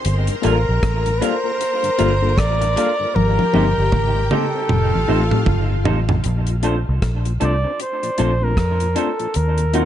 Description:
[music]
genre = lovers rock reggae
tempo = 77 BPM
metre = 4/4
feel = swing 60% on 16ths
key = Bb major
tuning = A4 = 440 Hz
[part]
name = string machine, full ensemble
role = second line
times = 0.0-6.2 s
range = F4 to Bb5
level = -27 LUFS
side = left 1 dB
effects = ensemble chorus, tape echo
[part]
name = deep reggae drum kit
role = drums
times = 0.0-9.9 s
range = hi-hat, kick drum, rim click, toms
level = -22 LUFS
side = equal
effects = none
[part]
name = vintage muted fingered electric bass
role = bass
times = 0.1-9.9 s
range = F1 to F2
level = -19 LUFS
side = equal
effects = none
[part]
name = mellow tonewheel organ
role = accompaniment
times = 0.3-9.9 s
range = Eb2 to G4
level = -31 LUFS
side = left 6 dB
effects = none
[part]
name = mellow tine electric piano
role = accompaniment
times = 0.4-9.9 s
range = A3 to A4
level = -26 LUFS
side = left 5 dB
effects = slow stereo tremolo, tape echo
[part]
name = electric guitar through a small old amp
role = stabs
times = 0.4-9.9 s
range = D4 to C5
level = -27 LUFS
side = right 4 dB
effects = wide subtle chorus, tape echo
[part]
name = warm flugelhorn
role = melody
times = 0.5-9.9 s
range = A4 to D5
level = -22 LUFS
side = right 1 dB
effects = tape echo
[sound]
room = little or no reverb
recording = nothing above 10.7 kHz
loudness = -16 LUFS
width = side -11 dB against mid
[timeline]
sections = 0.0-6.2 A section; 6.2-9.9 B section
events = drum fill 3.1-6.2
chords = 0.0 Gm7; 3.1 Abmaj7; 4.7 F7; 6.2 Bbmaj9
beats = | 0.05 0.82 1.60 2.37 | 3.15 3.92 4.70 5.47 | 6.25 7.02 7.80 8.58 | 9.35

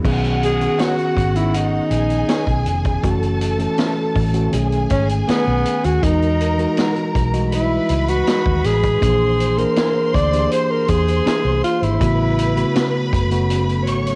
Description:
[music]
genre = lush 1970s-style soul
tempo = 80 BPM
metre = 4/4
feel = straight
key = B major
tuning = A4 = 439 Hz
[part]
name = clear studio string section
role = second line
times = 0.0-14.2 s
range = F#4 to C#6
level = -28 LUFS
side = equal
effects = cassette tape
[part]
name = mellow tine electric piano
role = accompaniment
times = 0.0-14.2 s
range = C#3 to D#5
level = -24 LUFS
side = equal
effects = cassette tape
[part]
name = vintage muted fingered electric bass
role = bass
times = 0.0-14.2 s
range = E#1 to E2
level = -23 LUFS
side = equal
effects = tube saturation
[part]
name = vintage drum kit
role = drums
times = 0.0-14.2 s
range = crash cymbal, hi-hat, kick drum, snare drum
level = -26 LUFS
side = equal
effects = none
[part]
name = breathy alto saxophone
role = melody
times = 0.4-12.9 s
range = B3 to D5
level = -22 LUFS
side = equal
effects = none
[part]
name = direct-recorded clean electric guitar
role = riff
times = 0.8-12.9 s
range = G#3 to C#5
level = -28 LUFS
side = equal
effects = cassette tape
[part]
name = soft string machine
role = sustained chords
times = 13.1-14.2 s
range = F#3 to C#4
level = -37 LUFS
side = equal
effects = none
[sound]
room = small room ambience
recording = home recording on cassette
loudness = -18 LUFS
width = mono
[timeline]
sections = 0.0-14.2 A section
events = alto saxophone solo 0.0-14.2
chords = 0.0 B69; 3.0 F#m7; 4.5 B13; 6.0 Emaj9; 9.0 A#7#11; 12.0 A69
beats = | 0.05 0.79 1.54 2.29 | 3.04 3.79 4.54 5.29 | 6.03 6.78 7.53 8.28 | 9.02 9.77 10.52 11.26 | 12.01 12.76 13.50

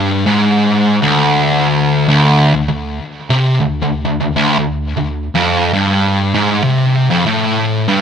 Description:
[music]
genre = metal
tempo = 79 BPM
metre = 4/4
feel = swing 60% on 8ths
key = D minor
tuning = A4 = 440 Hz
[part]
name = fuzz guitar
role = solo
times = 0.0-8.0 s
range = D2 to C3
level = -11 LUFS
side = equal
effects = distortion, ping-pong delay
[sound]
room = moderate studio reverb, RT60 0.6 s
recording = none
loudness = -11 LUFS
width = side -7 dB against mid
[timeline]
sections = 0.0-8.0 A section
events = none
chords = none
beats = 0.57 1.33 | 2.09 2.85 3.61 4.37 | 5.13 5.89 6.66 7.42

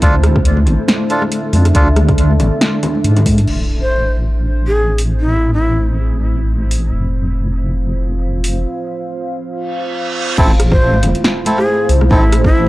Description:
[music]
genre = deep dubstep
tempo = 139 BPM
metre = 4/4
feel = swing 56% on 16ths, half-time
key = A harmonic minor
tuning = A4 = 439 Hz
[part]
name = deep dark ambient pad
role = sustained chords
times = 0.0-12.7 s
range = A3 to F5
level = -21 LUFS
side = equal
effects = chorus, built-in reverb
[part]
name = melodica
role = stabs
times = 0.0-1.9, 10.4-12.2 s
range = C4 to A4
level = -21 LUFS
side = right 1 dB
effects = dub echo
[part]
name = deep soft wobble bass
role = bass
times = 0.0-12.7 s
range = E1 to G#2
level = -14 LUFS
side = equal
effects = chorus, transformer saturation
[part]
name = deep house drum kit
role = drums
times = 0.0-12.5 s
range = crash cymbal, hi-hat, rim click, snare drum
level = -19 LUFS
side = equal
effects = overdrive, small room ambience
[part]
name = electronic kick drum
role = drums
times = 0.0-3.4, 10.4-12.5 s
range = none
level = -14 LUFS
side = equal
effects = overdrive, small room ambience
[part]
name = congas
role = percussion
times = 0.2-3.4, 10.9-12.7 s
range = none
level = -20 LUFS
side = left 1 dB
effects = dub echo
[part]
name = impact and reverse cymbal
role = sound effects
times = 3.5-5.2, 9.7-12.1 s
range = none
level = -25 LUFS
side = right 1 dB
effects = none
[part]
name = breathy shakuhachi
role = melody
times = 3.8-5.8, 10.7-12.7 s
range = E4 to C5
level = -20 LUFS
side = equal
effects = dub echo
[sound]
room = digital ambience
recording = dry, gritty hardware recording, cassette tape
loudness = -12 LUFS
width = side -18 dB against mid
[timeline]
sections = 0.0-3.5 A section; 3.5-10.4 B section; 10.4-12.7 C section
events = impact 3.5-5.2, 10.4-12.1; filter sweep on ambient pad 3.5-10.4; break 8.7-10.4; reverse cymbal 9.7-10.4; drop 10.4-12.7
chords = 0.0 Dm; 3.5 Am; 6.9 F5; 10.4 Am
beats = | 0.02 0.45 0.89 1.32 | 1.75 2.18 2.61 3.04 | 3.48 3.91 4.34 4.77 | 5.20 5.63 6.07 6.50 | 6.93 7.36 7.79 8.22 | 8.65 9.09 9.52 9.95 | 10.38 10.81 11.24 11.68 | 12.11 12.54

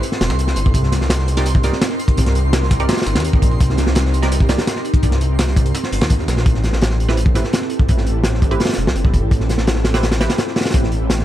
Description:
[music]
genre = drum and bass, jungle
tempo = 168 BPM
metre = 4/4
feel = straight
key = A minor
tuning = A4 = 442 Hz
[part]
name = ethereal airy pad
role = sustained chords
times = 0.0-11.2 s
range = C4 to Bb4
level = -25 LUFS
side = right 1 dB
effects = ensemble chorus, built-in reverb, vintage 12-bit sampler grit
[part]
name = filtered dub chord stab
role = stabs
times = 0.0-4.7, 7.1-10.4 s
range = C4 to D5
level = -27 LUFS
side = right 3 dB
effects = phaser, cassette tape, dub echo
[part]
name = breakbeat sampler-style drum kit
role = drums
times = 0.0-6.5 s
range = hi-hat, snare drum, tambourine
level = -31 LUFS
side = equal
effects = high-pass filter on perc, high-pass filter on snare, high-pass filter on hats
[part]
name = crunchy breakbeat drum kit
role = drums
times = 0.0-11.2 s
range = hi-hat, kick drum, snare drum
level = -17 LUFS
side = equal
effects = none
[part]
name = twinkling granular texture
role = texture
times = 0.0-6.5 s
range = C6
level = -31 LUFS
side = right 3 dB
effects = built-in reverb
[part]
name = detuned saw bass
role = bass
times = 0.2-11.2 s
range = E1 to Eb2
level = -18 LUFS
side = equal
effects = none
[sound]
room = studio ambience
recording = dark, warm production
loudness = -14 LUFS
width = side -13 dB against mid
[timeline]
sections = 0.0-6.5 A section; 6.5-11.2 A section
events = drop 0.0-6.5, 6.5-11.2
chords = 0.0 Am7; 0.7 Cm7; 6.5 Am7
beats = 0.03 0.39 | 0.74 1.10 1.46 1.82 | 2.17 2.53 2.89 3.24 | 3.60 3.96 4.32 4.67 | 5.03 5.39 5.74 6.10 | 6.46 6.82 7.17 7.53 | 7.89 8.24 8.60 8.96 | 9.32 9.67 10.03 10.39 | 10.74 11.10

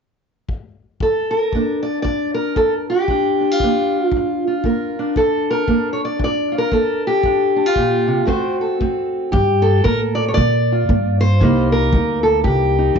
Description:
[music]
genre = acoustic country blues, solo or duo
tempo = 115 BPM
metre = 4/4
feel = swing 61% on 8ths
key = G minor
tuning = A4 = 441 Hz
[part]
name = kick drum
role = drums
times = 0.5-13.0 s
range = none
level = -24 LUFS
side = left 1 dB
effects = none
[part]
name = fingerpicked steel-string acoustic guitar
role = melody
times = 1.0-13.0 s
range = G2 to D5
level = -16 LUFS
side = equal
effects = none
[part]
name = upright bass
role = bass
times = 9.3-13.0 s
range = Bb1 to Bb2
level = -17 LUFS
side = equal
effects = none
[sound]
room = light reverb, small room ambience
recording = 1960s-style stereo, nothing above 7.6 kHz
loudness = -15 LUFS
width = side -6 dB against mid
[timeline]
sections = 0.0-1.0 A section; 1.0-9.3 B section; 9.3-13.0 C section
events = none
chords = 0.0 N.C.; 1.0 Gm7; 8.3 D7; 9.3 Gm7; 11.4 Cm7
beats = 0.48 | 1.00 1.52 2.04 2.56 | 3.08 3.60 4.12 4.64 | 5.16 5.68 6.20 6.72 | 7.24 7.76 8.28 8.80 | 9.32 9.84 10.36 10.88 | 11.40 11.92 12.44 12.96

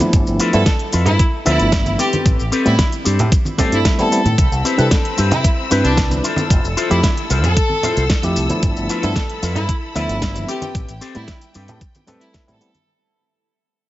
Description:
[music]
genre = nu-disco, nu disco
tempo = 113 BPM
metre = 4/4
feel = straight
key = unclear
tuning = A4 = 440 Hz
[part]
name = bright tine electric piano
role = accompaniment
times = 0.0-12.7 s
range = F3 to E5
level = -21 LUFS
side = equal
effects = vintage 12-bit sampler grit, sidechain pumping
[part]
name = pop drum kit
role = drums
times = 0.0-12.9 s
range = hi-hat, shaker, snare drum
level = -24 LUFS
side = equal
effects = small room ambience
[part]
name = congas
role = percussion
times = 0.0-12.9 s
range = none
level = -26 LUFS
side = right 2 dB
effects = none
[part]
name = fingered electric bass with an envelope filter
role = bass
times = 0.1-12.6 s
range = F1 to C3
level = -19 LUFS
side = equal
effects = tube saturation
[part]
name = electronic kick drum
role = drums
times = 0.1-12.5 s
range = none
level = -17 LUFS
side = equal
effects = small room ambience
[part]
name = electric guitar with an envelope filter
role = riff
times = 0.4-12.7 s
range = C4 to C5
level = -23 LUFS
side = left 3 dB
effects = wide subtle chorus
[part]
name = bright chamber violin section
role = melody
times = 0.5-12.9 s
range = D4 to A4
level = -23 LUFS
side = equal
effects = tape echo
[part]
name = bright symphonic string section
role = sustained chords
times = 4.4-12.9 s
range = C4 to E6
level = -28 LUFS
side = left 2 dB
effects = sidechain pumping
[sound]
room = light reverb, digital ambience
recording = heavily compressed radio sound, multiband compression, nothing above 7.7 kHz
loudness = -14 LUFS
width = side -15 dB against mid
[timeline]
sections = 0.0-12.9 A section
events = drop 0.0-12.9; fade-out 7.2-12.9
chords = 0.1 G13; 2.0 Am9; 4.4 Cmaj7; 6.2 Fmaj7; 8.6 G13; 10.5 Am9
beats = | 0.13 0.67 1.20 1.73 | 2.26 2.79 3.32 3.85 | 4.38 4.91 5.44 5.97 | 6.51 7.04 7.57 8.10 | 8.63 9.16 9.69 10.22 | 10.75 11.29 11.82 12.35

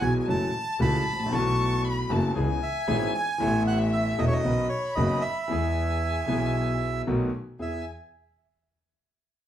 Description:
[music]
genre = tango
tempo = 115 BPM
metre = 4/4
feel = rubato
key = E major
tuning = A4 = 440 Hz
[part]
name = bandoneon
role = melody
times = 0.0-7.9 s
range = C#5 to B5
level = -30 LUFS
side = right 4 dB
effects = plate reverb
[part]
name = warm violin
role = second line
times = 0.0-7.8 s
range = E5 to C#6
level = -33 LUFS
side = left 4 dB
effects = none
[part]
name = warm concert grand piano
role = accompaniment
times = 0.0-7.8 s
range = E1 to A4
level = -28 LUFS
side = left 2 dB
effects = none
[part]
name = clear double bass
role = bass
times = 0.0-7.8 s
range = E1 to E2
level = -28 LUFS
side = right 1 dB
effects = none
[sound]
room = wet studio reverb, RT60 0.6 s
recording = heard from further back in the room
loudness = -24 LUFS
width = side -11 dB against mid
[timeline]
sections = 0.0-7.6 A section; 7.6-9.5 B section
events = none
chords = 0.3 F#m7; 1.3 B7sus4; 2.4 C#m7; 3.4 Asus2; 4.4 Badd9; 5.5 E; 7.1 B7; 7.6 E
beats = 0.27 0.80 | 1.32 1.84 2.36 2.88 | 3.40 3.92 4.45 4.97 | 5.49 6.02 6.54 7.07 | 7.59

